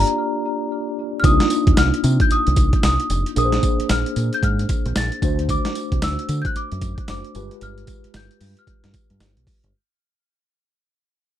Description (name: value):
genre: R&B, new jack swing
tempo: 113 BPM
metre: 4/4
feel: swing 62% on 16ths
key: C minor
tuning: A4 = 440 Hz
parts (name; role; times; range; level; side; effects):
- worn celesta; melody; 0.0-9.4 s; Bb5 to A6; -24 LUFS; left 1 dB; ping-pong delay
- mellow tine electric piano; accompaniment; 0.0-9.8 s; Ab3 to D5; -25 LUFS; left 1 dB; medium stereo tremolo
- deep dub fingered electric bass; bass; 0.0-9.7 s; F1 to D3; -21 LUFS; equal; none
- boom bap sampler-style drum kit; drums; 0.1-9.7 s; hi-hat, kick drum, snare drum, tambourine; -20 LUFS; equal; overdrive
room: little or no reverb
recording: none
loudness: -17 LUFS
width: side -11 dB against mid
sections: 0.0-1.2 A section; 1.2-9.7 B section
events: break 0.2-1.2; fade-out 1.2-9.7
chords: 0.0 Gm7; 1.2 Cm11; 3.4 Bb9; 5.2 D7; 7.3 G7b9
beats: 0.18 0.71 | 1.24 1.77 2.30 2.83 | 3.36 3.89 4.42 4.96 | 5.49 6.02 6.55 7.08 | 7.61 8.14 8.67 9.20